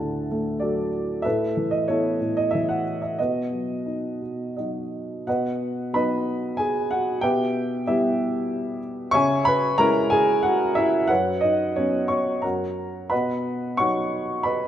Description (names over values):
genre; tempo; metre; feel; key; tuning
classical, lyrical solo piano; 82-97 BPM; 3/4; rubato; B major from 5.3 s; A4 = 440 Hz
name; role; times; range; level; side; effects
dark upright piano; solo; 0.0-14.7 s; D2 to C#6; -21 LUFS; equal; none
room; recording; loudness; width
light reverb; none; -21 LUFS; side -10 dB against mid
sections
0.0-5.3 A section; 5.3-14.7 B section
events
none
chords
0.0 Dadd9; 1.2 Asus2; 3.2 B; 7.2 Em/B; 9.1 C#m; 11.1 F#sus4; 12.4 F#; 13.1 B